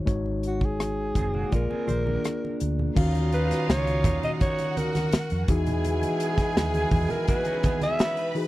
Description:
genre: lush 1970s-style soul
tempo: 83 BPM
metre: 4/4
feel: straight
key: Eb phrygian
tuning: A4 = 440 Hz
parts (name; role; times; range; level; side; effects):
- mellow tine electric piano; accompaniment; 0.0-8.5 s; Eb3 to F5; -30 LUFS; left 2 dB; none
- vintage muted fingered electric bass; bass; 0.1-7.1 s; Gb1 to F2; -27 LUFS; equal; none
- modern studio drum kit; drums; 0.1-8.5 s; crash cymbal, hi-hat, kick drum, rim click, snare drum; -26 LUFS; equal; none
- congas; percussion; 0.1-8.0 s; none; -34 LUFS; right 3 dB; none
- breathy alto saxophone; melody; 0.5-8.3 s; Gb4 to E5; -29 LUFS; equal; none
- electric guitar through a small old amp; riff; 1.2-2.9, 7.3-8.5 s; Ab3 to C5; -35 LUFS; right 6 dB; tremolo
- bright symphonic violin section; second line; 2.9-8.5 s; F4 to B5; -34 LUFS; left 1 dB; none
- warm horn section; stabs; 3.0-8.3 s; Bb2 to E4; -33 LUFS; right 4 dB; none
room: small room ambience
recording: dry, close 1970s-style studio recording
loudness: -23 LUFS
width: side -16 dB against mid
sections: 0.0-3.0 A section; 3.0-8.5 B section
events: none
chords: 0.1 Ab7sus4; 1.5 Bb7; 3.0 Ebm9; 5.5 Emaj9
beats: | 0.08 0.80 1.52 2.24 | 2.96 3.68 4.40 5.12 | 5.84 6.56 7.28 8.00

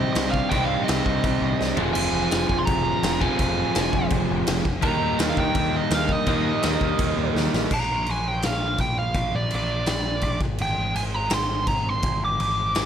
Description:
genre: punk rock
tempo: 166 BPM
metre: 4/4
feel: straight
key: unclear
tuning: A4 = 439 Hz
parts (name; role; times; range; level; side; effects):
- dark smooth lead guitar; melody; 0.0-12.9 s; D5 to D6; -26 LUFS; right 2 dB; overdrive, ping-pong delay
- overdriven electric guitar; riff; 0.0-7.7 s; C3 to Ab4; -27 LUFS; left 12 dB; none
- overdriven electric guitar; riff; 0.0-7.7 s; F2 to Eb4; -26 LUFS; right 13 dB; none
- growling picked electric bass; bass; 0.0-12.9 s; F1 to Eb2; -28 LUFS; equal; overdrive
- raw garage drum kit; drums; 0.2-12.8 s; crash cymbal, kick drum, snare drum, toms; -26 LUFS; left 1 dB; none
room: light reverb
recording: none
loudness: -20 LUFS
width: side -9 dB against mid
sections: 0.0-7.7 A section; 7.7-12.9 B section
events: drum fill 1.6-2.0, 7.3-7.7; half time 7.7-12.9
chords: 0.0 Cm; 1.8 Fm; 4.8 Eb; 7.7 Bb; 10.4 Ab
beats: 0.15 | 0.51 0.87 1.24 1.60 | 1.96 2.32 2.68 3.04 | 3.40 3.75 4.12 4.47 | 4.83 5.19 5.55 5.91 | 6.27 6.63 6.99 7.35 | 7.71 8.07 8.43 8.79 | 9.15 9.51 9.87 10.23 | 10.59 10.95 11.31 11.67 | 12.03 12.39 12.75

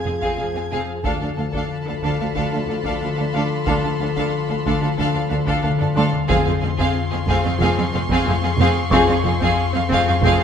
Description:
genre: cinematic, suspense film score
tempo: 91 BPM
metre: 4/4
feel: straight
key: unclear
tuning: A4 = 440 Hz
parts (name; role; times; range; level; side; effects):
- rich chamber violin section; melody; 0.0-10.4 s; F5; -26 LUFS; left 2 dB; none
- warm French horn section; sustained chords; 0.0-10.4 s; F3 to A4; -27 LUFS; left 4 dB; none
- clear baby grand piano; texture; 0.0-1.1, 6.0-10.4 s; C6 to Db6; -31 LUFS; left 1 dB; none
- rich studio violin section; texture; 0.0-10.4 s; A5 to Ab6; -32 LUFS; left 2 dB; none
- rich chamber violin section; second line; 0.1-10.4 s; Ab4 to A4; -26 LUFS; right 1 dB; none
- rich studio viola section; accompaniment; 0.1-10.4 s; C4 to D4; -27 LUFS; right 3 dB; none
- marimba with medium mallets; riff; 0.1-10.4 s; F2 to D3; -24 LUFS; left 5 dB; none
- dark studio double bass section; bass; 0.1-10.3 s; F1 to D2; -26 LUFS; right 4 dB; none
- rich studio cello section; bass; 0.1-10.3 s; D2 to F2; -27 LUFS; right 4 dB; none
- taiko ensemble; drums; 0.2-10.4 s; none; -29 LUFS; right 1 dB; none
room: moderate scoring stage reverb, RT60 1.8 s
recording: none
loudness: -17 LUFS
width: side -8 dB against mid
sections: 0.0-10.4 A section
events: drum fill 5.6-6.3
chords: 0.0 Fm; 1.1 Dm; 6.3 Fm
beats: 0.39 | 1.05 1.71 2.36 3.01 | 3.67 4.33 4.99 5.64 | 6.30 6.95 7.61 8.26 | 8.92 9.57 10.23

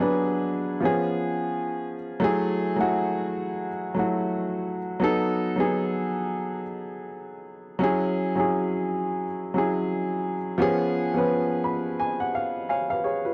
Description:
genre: R&B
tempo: 86 BPM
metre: 4/4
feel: swing 61% on 16ths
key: F# minor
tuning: A4 = 436 Hz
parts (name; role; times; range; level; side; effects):
- dark upright piano; solo; 0.0-13.3 s; E#3 to B5; -26 LUFS; equal; none
room: light reverb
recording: dry, close 1970s-style studio recording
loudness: -26 LUFS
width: mono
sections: 0.0-13.3 A section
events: upright piano fill 11.3-13.3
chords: 0.0 G#m7b5; 0.8 C#7; 2.2 F#m9; 5.0 B7; 7.8 E69; 10.6 C#7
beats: 0.12 0.82 1.52 | 2.22 2.92 3.61 4.31 | 5.01 5.71 6.40 7.10 | 7.80 8.50 9.19 9.89 | 10.59 11.29 11.98 12.68

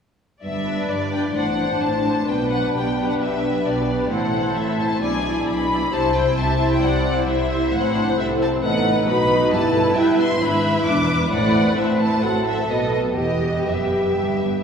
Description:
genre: quick classical-period movement for symphony orchestra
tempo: 132 BPM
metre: 4/4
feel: rubato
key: G major, E minor from 7.7 s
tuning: A4 = 440 Hz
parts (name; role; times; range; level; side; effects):
- rich studio violin section; melody; 0.4-14.6 s; D5 to D6; -25 LUFS; left 1 dB; none
- rich chamber violin section; second line; 0.4-14.6 s; G4 to E5; -27 LUFS; left 3 dB; none
- mellow French horn section; sustained chords; 0.4-14.6 s; B3 to A4; -24 LUFS; left 2 dB; none
- rich chamber double bass section; bass; 0.4-14.6 s; E1 to A2; -28 LUFS; right 1 dB; none
- rich studio cello section; bass; 0.4-14.6 s; E2 to A3; -25 LUFS; right 1 dB; none
- rich symphonic viola section; accompaniment; 0.7-14.6 s; A3 to D5; -25 LUFS; right 2 dB; none
room: wet church reverb, RT60 2.5 s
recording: recorded in a church or concert hall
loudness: -18 LUFS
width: side -6 dB against mid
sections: 0.4-14.6 A section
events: none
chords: 0.4 G; 1.4 D7/A; 2.3 G/B; 4.1 Am; 5.0 E7/B; 5.9 C69; 7.7 F#m7b5/A; 8.6 B7/A; 9.5 Em/G; 10.4 E7/G#; 11.3 Am; 12.2 F#dim/A; 12.7 B7; 13.2 Em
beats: | 0.43 0.89 1.35 1.81 | 2.28 2.74 3.19 3.65 | 4.11 4.56 5.02 5.47 | 5.92 6.38 6.83 7.28 | 7.73 8.19 8.63 9.08 | 9.53 9.97 10.42 10.87 | 11.32 11.77 12.22 12.69 | 13.18 13.67 14.16

